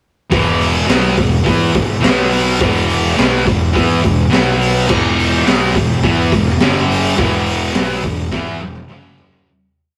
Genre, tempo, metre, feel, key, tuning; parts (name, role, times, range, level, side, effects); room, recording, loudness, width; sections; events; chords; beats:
garage rock duo or trio; 105 BPM; 4/4; straight; A4 = 443 Hz
thick fuzz guitar; riff; 0.3-9.5 s; E2 to E4; -17 LUFS; equal; distortion
fuzz picked electric bass; bass; 0.3-9.4 s; E1 to E2; -23 LUFS; equal; overdrive
raw garage drum kit; drums; 0.3-9.4 s; crash cymbal, hi-hat, kick drum, snare drum, toms; -19 LUFS; equal
light reverb; rough rehearsal-room recording, warm saturation; -14 LUFS; mono
0.3-9.5 riff
fade-out 7.2-9.5; drum fill 8.3-9.5
0.3 E5; 2.0 B5; 2.6 E5; 4.3 B5; 4.9 E5; 6.6 F#5; 7.2 E5; 8.9 F#5
| 0.31 0.88 1.45 2.02 | 2.59 3.17 3.74 4.31 | 4.88 5.46 6.03 6.60 | 7.17 7.75 8.32 8.89